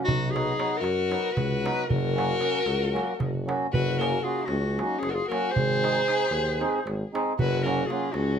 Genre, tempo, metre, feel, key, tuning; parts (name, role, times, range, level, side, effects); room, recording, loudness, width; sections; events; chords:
balkan folk, Balkan wedding band; 230 BPM (eighths); 7/8; straight; F# major; A4 = 440 Hz
clear clarinet; melody; 0.0-8.4 s; F#4 to B#4; -28 LUFS; left 1 dB
dark violin; second line; 0.0-8.4 s; C#4 to G#4; -32 LUFS; left 3 dB
mellow accordion; accompaniment; 0.0-8.1 s; F#3 to G#4; -29 LUFS; right 2 dB
warm tuba; bass; 0.1-8.4 s; F#1 to F#2; -30 LUFS; equal
darbuka; percussion; 0.1-8.4 s; -30 LUFS; right 2 dB
moderate studio reverb, RT60 0.6 s; -24 LUFS; side -8 dB against mid
0.0-3.7 A section; 3.7-8.4 B section
0.1 B; 1.9 F#; 5.6 G#; 7.4 F#